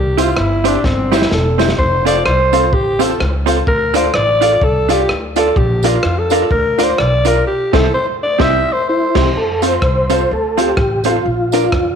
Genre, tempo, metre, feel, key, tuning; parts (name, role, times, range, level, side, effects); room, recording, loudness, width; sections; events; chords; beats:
ska; 127 BPM; 4/4; swing 60% on 8ths; F major; A4 = 440 Hz
raspy alto saxophone; melody; 0.0-9.3 s; C4 to E5; -16 LUFS; equal; slapback echo
upright bass; bass; 0.0-12.0 s; E1 to F2; -19 LUFS; equal
vintage hollow-body jazz guitar; accompaniment; 0.2-11.8 s; C4 to D5; -20 LUFS; right 12 dB; slapback echo
dark upright piano; stabs; 0.2-11.7 s; D4 to F5; -21 LUFS; left 12 dB
crunchy breakbeat drum kit; drums; 0.2-11.9 s; crash cymbal, hi-hat, kick drum, rim click, snare drum; -20 LUFS; equal
tambourine; percussion; 0.2-11.6 s; -34 LUFS; right 14 dB
mellow tonewheel organ; melody; 8.9-12.0 s; E4 to C5; -17 LUFS; equal; chorus vibrato, slapback echo
moderate echo chamber reverb, RT60 1.9 s, studio ambience; 1960s-style stereo with parts hard left and right; -12 LUFS; side -7 dB against mid
0.0-9.3 A section; 9.3-12.0 B section
alto saxophone solo 0.0-9.3; drum fill 0.8-1.8; band accent 7.5-9.3
0.0 C; 1.8 F; 3.7 Dm; 5.6 Bb; 7.5 C; 9.3 F; 11.2 Bb
0.37 0.84 1.31 | 1.79 2.26 2.73 3.20 | 3.67 4.15 4.62 5.09 | 5.56 6.04 6.51 6.98 | 7.45 7.93 8.40 8.88 | 9.35 9.82 10.30 10.77 | 11.25 11.72